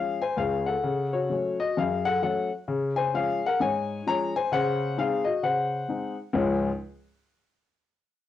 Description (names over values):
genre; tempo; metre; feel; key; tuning
jazz, stride piano; 131 BPM; 4/4; swing 61% on 8ths; Db major; A4 = 437 Hz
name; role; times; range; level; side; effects
warm upright piano; solo; 0.0-6.7 s; Db2 to Bb5; -24 LUFS; left 3 dB; none
room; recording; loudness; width
wet small room reverb, RT60 0.6 s; home recording on cassette; -24 LUFS; side -12 dB against mid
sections
0.0-6.3 A section; 6.3-8.2 B section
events
none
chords
0.0 Db; 0.8 Gbm/Db; 2.7 Db; 4.5 Ab7/Db; 6.3 Db